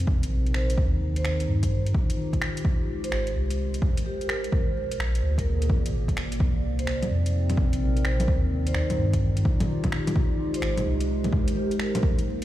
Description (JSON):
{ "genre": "future garage", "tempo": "128 BPM", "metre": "4/4", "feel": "swing 65% on 16ths", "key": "unclear", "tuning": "A4 = 441 Hz", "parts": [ { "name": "warbly tape-like pad", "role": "sustained chords", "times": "0.0-12.4 s", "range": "Bb2 to D5", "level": "-30 LUFS", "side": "equal", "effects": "chorus, built-in reverb, sidechain pumping" }, { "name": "warm sub bass", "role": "bass", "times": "0.0-11.3 s", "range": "Ab1 to G2", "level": "-25 LUFS", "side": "equal", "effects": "sidechain pumping" }, { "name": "deep house drum kit", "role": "drums", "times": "0.0-12.4 s", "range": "bongos, finger snaps, hi-hat", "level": "-32 LUFS", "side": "left 1 dB", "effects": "overdrive, studio reverb" }, { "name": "electronic kick drum", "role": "drums", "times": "0.1-12.2 s", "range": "none", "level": "-25 LUFS", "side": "equal", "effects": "overdrive, studio reverb" }, { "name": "vibraphone with medium mallets", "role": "melody", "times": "0.5-12.0 s", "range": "G4 to C5", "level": "-35 LUFS", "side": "right 1 dB", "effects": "ping-pong delay" } ], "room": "little or no reverb", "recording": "played on a big sound system in a bare room, large studio reverb, vinyl crackle", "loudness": "-23 LUFS", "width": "side -14 dB against mid", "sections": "0.0-12.4 A section", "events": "none", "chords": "0.0 Cm7; 0.8 Eb; 2.7 Abmaj7; 4.5 Bb7; 6.4 Cm9; 8.3 Ebmaj7; 10.2 Abmaj7" }